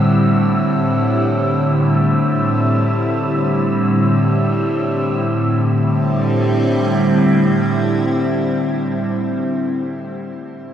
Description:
ambient; free time; A minor; A4 = 441 Hz
evolving wavetable pad; sustained chords; 0.0-9.5 s; A2 to E4; -15 LUFS; equal; phaser, built-in reverb, shimmer reverb
wind-like tuned noise texture; texture; 0.0-5.3 s; E6; -27 LUFS; equal; built-in reverb, shimmer reverb
wet huge ambient reverb, RT60 8.1 s; in a vast, echoing space; -14 LUFS; side -9 dB against mid
0.0-5.3 A section; 5.3-10.0 B section
0.0 Am7

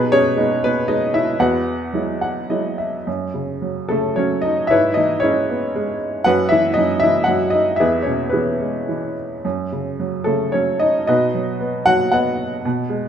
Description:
classical, lyrical solo piano; 102-121 BPM; 3/4; rubato; A4 = 440 Hz
clear upright piano; solo; 0.0-13.1 s; E2 to F#5; -16 LUFS; equal
wet recital hall reverb, RT60 1.3 s; -17 LUFS; side -8 dB against mid
0.0-3.1 A section; 3.1-13.1 B section
upright piano fill 1.9-3.1
0.0 G#m/B; 1.4 Eadd9; 3.1 F#m; 4.7 E6/G#; 6.3 Bsus4/F#; 7.8 E; 9.4 F#m; 11.1 B

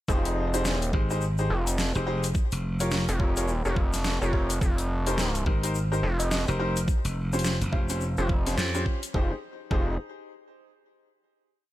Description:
glitch hop; 106 BPM; 4/4; swing 60% on 16ths; F minor; A4 = 440 Hz
clear grand piano; stabs; 0.1-9.9 s; Db4 to Db5; -32 LUFS; left 1 dB; sidechain pumping, ping-pong delay
gritty driven synth bass; bass; 0.1-10.0 s; F1; -27 LUFS; equal
electronic kick drum; drums; 0.1-9.8 s; -26 LUFS; equal; overdrive
egg shaker; percussion; 0.1-9.1 s; -39 LUFS; left 5 dB
dubstep drum kit; drums; 0.3-9.1 s; hi-hat, rim click, snare drum; -32 LUFS; equal; overdrive
glassy slap bass; bass; 0.9-8.8 s; F1 to F2; -28 LUFS; equal
woody wave-folded pluck; melody; 6.2-8.0 s; Eb5 to F5; -38 LUFS; right 2 dB; chorus, ping-pong delay
digital ambience; -24 LUFS; side -15 dB against mid
0.1-9.1 drop; 9.1-11.4 final chord
drop 0.1-9.1; band accent 8.6
0.1 Fm9; 2.3 Gm7b5/F; 4.6 Abmaj7/F; 6.9 Dbmaj7#11/F; 9.1 Fm9

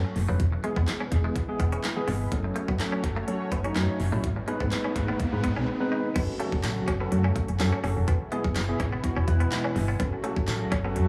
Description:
dance-pop; 125 BPM; 4/4; straight; F# dorian; A4 = 444 Hz
tine electric piano; accompaniment; 0.0-11.1 s; E3 to G#5; -34 LUFS; equal; sidechain pumping, analog delay
chorused pulse-width pad; sustained chords; 0.0-11.1 s; B2 to C#5; -37 LUFS; equal; sidechain pumping
direct-recorded clean electric guitar; riff; 0.0-11.0 s; G#3 to D#4; -39 LUFS; equal; ensemble chorus, analog delay
solid FM bass; bass; 0.2-11.1 s; E1 to G#2; -29 LUFS; equal; sidechain pumping
pop drum kit; drums; 0.2-11.1 s; crash cymbal, handclaps, hi-hat, kick drum, snare drum; -34 LUFS; equal; analog delay
riser; sound effects; 4.3-5.7 s; -40 LUFS; equal
tambourine; percussion; 6.6-10.6 s; -44 LUFS; equal
light reverb; echo-heavy mix, small room ambience; -27 LUFS; mono
0.0-6.2 A section; 6.2-11.1 B section
riser 4.3-6.2; tine electric piano fill 9.3-10.0
0.4 E; 2.3 F#m; 4.2 G#m; 6.2 F#m; 8.1 E; 10.0 F#m

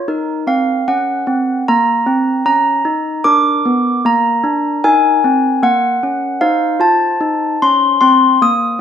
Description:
classical, tune for handbells; 76 BPM; 4/4; straight; A4 = 439 Hz
handbells; solo; 0.0-8.8 s; Bb3 to Eb6; -12 LUFS; equal
moderate stone room reverb, RT60 1.0 s; minimal, uncompressed stereo recording; -12 LUFS; side -8 dB against mid
0.0-8.8 A section
0.1 Ebm; 3.3 Bb; 4.8 Ebm; 6.4 F7

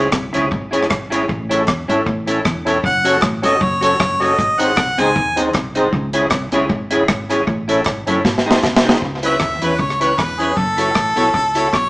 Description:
ska; 155 BPM; 4/4; swing 55% on 8ths; C# harmonic minor; A4 = 440 Hz
semi-hollow electric guitar; accompaniment; 0.0-11.7 s; D#4 to C#5; -21 LUFS; equal; tube saturation, tape echo
percussive tonewheel organ; stabs; 0.0-11.7 s; B#3 to B4; -21 LUFS; equal; overdrive, chorus vibrato, stopped rotary speaker
hollow-body short-scale fingered electric bass; bass; 0.0-11.9 s; E1 to E2; -27 LUFS; equal
clean electric guitar; riff; 0.1-11.9 s; E2 to E3; -27 LUFS; left 1 dB
deep reggae drum kit; drums; 0.1-11.8 s; hi-hat, kick drum, rim click, snare drum; -20 LUFS; equal; tape echo
group handclap; percussion; 0.1-11.8 s; -32 LUFS; equal
clear harmonica; melody; 2.9-5.4, 9.3-11.9 s; G#4 to G#5; -17 LUFS; equal
wet studio reverb, RT60 0.8 s; band playing live in one room, small speaker sound; -14 LUFS; side -22 dB against mid
0.0-9.0 A section; 9.0-11.9 B section
drum fill 8.2-9.0
0.0 C#m; 1.3 A; 2.8 F#m; 4.4 G#; 5.9 C#m; 7.5 A; 8.2 G#; 9.0 C#m7; 10.6 F#m7

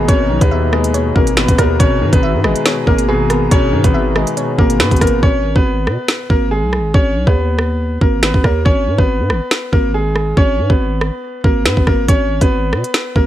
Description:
hip hop, drill; 140 BPM; 4/4; half-time; G# minor; A4 = 444 Hz
clear concert grand piano; melody; 0.0-13.3 s; G#3 to C#5; -18 LUFS; equal; low-pass filter
glassy wavetable pluck; second line; 0.0-5.2 s; A#4 to E5; -24 LUFS; right 4 dB; chorus, digital delay
felt-muted upright piano; accompaniment; 0.0-5.3 s; B2 to B3; -19 LUFS; left 5 dB; low-pass filter
glassy FM pad; sustained chords; 0.0-5.2 s; G#4 to A#5; -28 LUFS; equal; ensemble chorus, built-in reverb
growling 808-style bass; bass; 0.0-13.3 s; G#1 to B2; -17 LUFS; equal
drill drum kit; drums; 0.1-13.3 s; finger snaps, hi-hat, kick drum, rim click, snare drum; -14 LUFS; equal
little or no reverb; -12 LUFS; side -12 dB against mid
0.0-5.2 A section; 5.2-13.3 B section
hi-hats muted 5.2-12.1
0.0 G#madd9

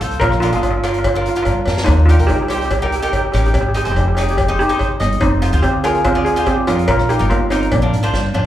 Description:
calypso; 144 BPM; 4/4; straight; A4 = 439 Hz
steel pan; melody; 0.0-8.3 s; Bb3 to Bb4; -18 LUFS; right 1 dB; slapback echo
cavaquinho; accompaniment; 0.0-8.5 s; D4 to Eb5; -22 LUFS; equal; slapback echo
upright bass; bass; 0.0-8.5 s; F1 to Ab2; -17 LUFS; equal
street-band drum kit; drums; 0.0-8.4 s; hi-hat, kick drum, rim click, snare drum, toms; -23 LUFS; equal
cowbell; percussion; 0.2-8.4 s; -24 LUFS; left 1 dB; slapback echo
light reverb, studio reverb; live gig heard through the venue's PA, club reverb; -13 LUFS; side -12 dB against mid
0.0-8.5 A section
drum fill 1.7, 8.1-8.5
0.2 Bb; 1.9 Eb; 3.5 Ab; 5.2 Fm; 6.9 Bbsus4; 7.7 Bbadd9

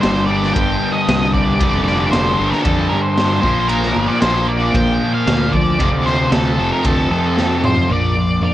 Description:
quiet-loud alternative rock; 114 BPM; 4/4; straight; G minor; A4 = 440 Hz
octave-fuzz lead guitar; melody; 0.0-8.5 s; A4 to G5; -20 LUFS; left 1 dB; distortion
tonewheel organ; sustained chords; 0.0-7.9 s; F3 to F5; -33 LUFS; right 1 dB
sludgy distorted guitar; riff; 0.0-8.5 s; F2 to Bb3; -20 LUFS; left 5 dB; overdrive, cassette tape
tight distorted guitar; riff; 0.0-7.9 s; F2 to Bb3; -22 LUFS; right 7 dB; distortion, cassette tape
fuzz fingered electric bass; bass; 0.0-8.5 s; F1 to G2; -21 LUFS; equal; overdrive
raw garage drum kit; drums; 0.0-7.9 s; kick drum, ride cymbal, snare drum, toms; -20 LUFS; equal; cassette tape
twelve-string electric guitar; arpeggios; 7.9-8.5 s; Bb2 to Bb4; -23 LUFS; right 5 dB; spring reverb, cassette tape
little or no reverb; home recording on cassette; -13 LUFS; side -13 dB against mid
0.0-7.9 A section
drum fill 7.4-7.9
0.0 Gm; 3.4 Bb; 5.8 F; 7.9 Bb

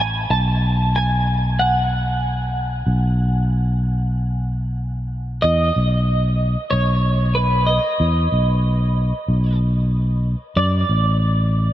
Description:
post-rock; 94 BPM; 4/4; straight; A4 = 440 Hz
twelve-string electric guitar; melody; 0.0-11.7 s; B4 to A5; -22 LUFS; right 1 dB; lush chorus, tape echo
fingered electric bass; bass; 0.0-11.7 s; A1 to F#2; -18 LUFS; equal
moderate huge ambient reverb, RT60 8.0 s; dreamy mix soaked in reverb; -17 LUFS; side -13 dB against mid
0.0-5.4 A section; 5.4-11.7 B section
0.3 B5; 5.4 N.C.; 10.6 D

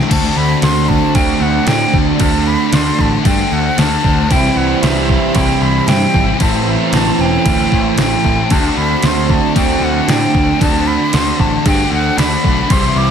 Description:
rock, shoegaze and dream pop; 114 BPM; 4/4; straight; D mixolydian; A4 = 444 Hz
breathy concert flute; melody; 0.0-13.1 s; E5 to D6; -19 LUFS; equal; digital delay
chorused pulse-width pad; sustained chords; 0.0-13.1 s; G4 to B5; -27 LUFS; left 1 dB
crunchy overdriven guitar; riff; 0.0-13.1 s; A2 to F#4; -18 LUFS; right 10 dB; reverse reverb
thick fuzz guitar; riff; 0.0-13.1 s; A2 to D4; -19 LUFS; left 12 dB; distortion, ensemble chorus
growling picked electric bass; bass; 0.0-13.1 s; E1 to A2; -19 LUFS; equal; overdrive
tight distorted guitar; riff; 0.1-13.1 s; A2 to F#4; -22 LUFS; left 1 dB; distortion
detuned 8-bit digital drum machine; drums; 0.1-12.8 s; crash cymbal, kick drum, snare drum; -17 LUFS; equal; overdrive
light reverb, digital ambience; -11 LUFS; side -8 dB against mid
0.1-13.1 A section
0.1 D7sus4; 4.3 Cmaj7; 6.4 Am7; 8.5 D7sus4

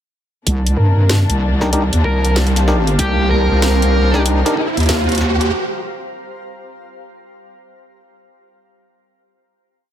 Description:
glitch hop; 95 BPM; 4/4; swing 63% on 16ths; C minor; A4 = 440 Hz
rich symphonic string section; sustained chords; 0.5-5.5 s; C3 to D4; -25 LUFS; left 3 dB; sidechain pumping
wobble bass; bass; 0.5-5.5 s; C2 to G2; -14 LUFS; equal; chorus, overdrive
drum and bass drum kit; drums; 0.5-5.5 s; hi-hat, snare drum; -20 LUFS; equal; high-pass filter on hats, high-pass filter on snare
electronic kick drum; drums; 0.5-4.7 s; -30 LUFS; equal
riser; sound effects; 2.3-5.5 s; -23 LUFS; right 2 dB
granular cloud pad; texture; 1.4-5.5 s; G4 to Bb5; -26 LUFS; right 1 dB; built-in reverb, sidechain pumping
fuzz lead guitar; melody; 0.8-4.2 s; G4 to Bb4; -22 LUFS; equal; distortion, low-pass filter, ping-pong delay
auto-wah clav; stabs; 1.6-4.7 s; D4 to Bb4; -21 LUFS; left 1 dB; overdrive, sidechain pumping, low-pass filter, ping-pong delay
light reverb; -13 LUFS; side -10 dB against mid
0.5-5.5 build
build-up 0.5-5.5; filter sweep on lead electric guitar 0.5-5.5; riser 2.3-5.5
0.5 Cm9

